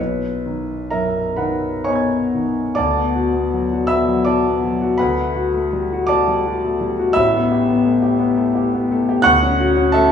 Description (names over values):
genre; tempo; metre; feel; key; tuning
classical, impressionist solo piano; 41-59 BPM (dotted quarters); 6/8; rubato; D major; A4 = 439 Hz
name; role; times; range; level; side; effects
warm concert grand piano; solo; 0.0-10.1 s; A1 to G#6; -15 LUFS; left 1 dB; none
room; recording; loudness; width
wet recital hall reverb, RT60 1.7 s; small room ambience; -16 LUFS; side -7 dB against mid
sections
0.0-2.8 A section; 2.8-10.1 B section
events
none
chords
0.0 B69; 2.8 D6; 5.0 Gmaj9/D; 7.2 Asus2; 9.3 Dmaj9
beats
1.39 | 2.78 3.91 | 5.01 6.11 | 7.18 8.21 | 9.26